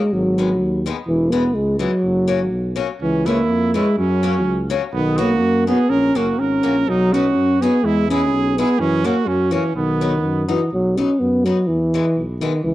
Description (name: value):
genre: alpine folk, alpine dance band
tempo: 125 BPM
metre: 2/4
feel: rubato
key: B major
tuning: A4 = 439 Hz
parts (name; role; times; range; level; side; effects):
- dark euphonium; melody; 0.0-12.7 s; D#3 to C#4; -17 LUFS; equal; cassette tape
- dark tuba; bass; 0.1-12.7 s; E1 to F#2; -24 LUFS; equal; none
- picked swing-style acoustic guitar; accompaniment; 0.4-12.5 s; D#3 to E4; -26 LUFS; left 7 dB; cassette tape
- clear trumpet; second line; 3.0-10.5 s; B3 to A#4; -25 LUFS; right 8 dB; cassette tape
room: light reverb, small room ambience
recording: home recording on cassette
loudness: -16 LUFS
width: side -15 dB against mid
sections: 0.0-10.7 A section; 10.7-12.7 B section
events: none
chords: 0.1 G#m7; 1.1 E; 2.0 F#; 3.0 C#m; 4.0 F#; 4.9 B; 5.9 F#; 6.9 Badd9; 7.8 E; 8.8 F#; 9.7 B; 11.7 E